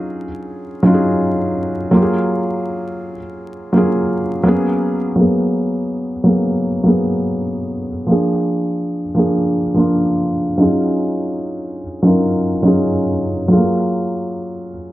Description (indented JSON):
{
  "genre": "lo-fi hip hop",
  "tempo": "83 BPM",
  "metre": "4/4",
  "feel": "swing 64% on 16ths",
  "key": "G# dorian",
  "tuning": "A4 = 439 Hz",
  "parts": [
    { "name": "felt-muted upright piano", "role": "solo", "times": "0.0-14.9 s", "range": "E#3 to A#4", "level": "-15 LUFS", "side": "equal", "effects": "low-pass filter" }
  ],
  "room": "wet small room ambience, RT60 0.5 s",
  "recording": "dark, warm production, vinyl crackle, low-pass filter",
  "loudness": "-14 LUFS",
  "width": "side -16 dB against mid",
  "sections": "0.0-5.2 A section; 5.2-14.9 B section",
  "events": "filter sweep 5.2-14.9",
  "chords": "0.0 D#m11; 1.9 F#maj9; 4.5 G#m11; 5.2 G#m9; 8.1 A#7; 10.6 D#m11; 13.5 F#maj9"
}